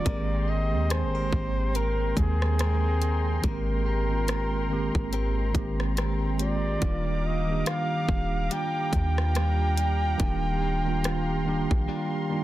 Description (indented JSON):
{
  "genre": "contemporary R&B",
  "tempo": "71 BPM",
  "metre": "4/4",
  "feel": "swing 58% on 16ths",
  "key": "unclear",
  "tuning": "A4 = 444 Hz",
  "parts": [
    { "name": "breathy flugelhorn", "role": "melody", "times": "0.0-12.4 s", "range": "Ab4 to G5", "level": "-32 LUFS", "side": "equal", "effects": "none" },
    { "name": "mellow tine electric piano", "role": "accompaniment", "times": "0.0-12.4 s", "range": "Eb3 to Bb4", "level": "-31 LUFS", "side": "right 3 dB", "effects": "medium stereo tremolo" },
    { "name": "warm analog pad", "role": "sustained chords", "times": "0.0-12.4 s", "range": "Ab3 to D6", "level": "-37 LUFS", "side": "right 1 dB", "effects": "chorus, sidechain pumping" },
    { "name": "direct-recorded clean electric guitar", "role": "arpeggios", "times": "0.0-12.4 s", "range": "Eb3 to Bb4", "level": "-36 LUFS", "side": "left 8 dB", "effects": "spring reverb, ping-pong delay" },
    { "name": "warm 808-style bass", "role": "bass", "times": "0.1-11.9 s", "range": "Eb1 to Eb2", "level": "-27 LUFS", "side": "equal", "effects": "none" },
    { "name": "trap drum kit", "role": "drums", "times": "0.1-11.9 s", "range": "hi-hat, kick drum, rim click", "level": "-29 LUFS", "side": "equal", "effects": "none" }
  ],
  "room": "little or no reverb",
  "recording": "dense, heavily limited modern master",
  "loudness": "-24 LUFS",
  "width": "side -15 dB against mid",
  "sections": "0.1-12.4 A section",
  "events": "break 11.9-12.4",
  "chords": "0.1 Abmaj9; 6.8 Ebmaj9",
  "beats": "| 0.06 0.90 1.75 2.59 | 3.44 4.28 5.13 5.97 | 6.82 7.66 8.51 9.35 | 10.20 11.04 11.89"
}